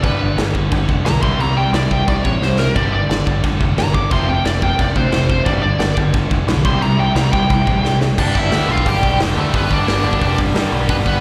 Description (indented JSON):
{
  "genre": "punk rock",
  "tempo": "177 BPM",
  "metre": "4/4",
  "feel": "straight",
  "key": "unclear",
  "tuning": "A4 = 440 Hz",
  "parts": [
    { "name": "smooth overdriven lead guitar", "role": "melody", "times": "0.0-11.2 s", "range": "A3 to D6", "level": "-23 LUFS", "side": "equal", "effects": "slapback echo, digital delay" },
    { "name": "distorted electric guitar", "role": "riff", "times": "0.0-11.2 s", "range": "F2 to C4", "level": "-30 LUFS", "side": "equal", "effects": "none" },
    { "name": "overdriven electric guitar", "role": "riff", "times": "0.0-11.2 s", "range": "F2 to C4", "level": "-25 LUFS", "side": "equal", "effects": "slapback echo" },
    { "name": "tight distorted guitar", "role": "riff", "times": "0.0-11.2 s", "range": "F2 to C4", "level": "-28 LUFS", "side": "equal", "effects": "none" },
    { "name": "growling picked electric bass", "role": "bass", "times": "0.0-11.2 s", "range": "F1 to G2", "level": "-21 LUFS", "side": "equal", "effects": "overdrive" },
    { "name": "big rock drum kit", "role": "drums", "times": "0.0-11.1 s", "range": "crash cymbal, hi-hat, kick drum, snare drum", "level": "-22 LUFS", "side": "equal", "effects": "none" }
  ],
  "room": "small room ambience",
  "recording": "live gig heard through the venue's PA, recital hall reverb",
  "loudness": "-16 LUFS",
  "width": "mono",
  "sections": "0.0-8.2 A section; 8.2-11.2 B section",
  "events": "lead electric guitar solo 0.0-8.2; drum fill 2.4-2.8, 7.8-8.2",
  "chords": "0.0 G; 1.2 C5; 2.8 G5; 4.1 F5; 5.5 G5; 6.7 C5; 8.2 G"
}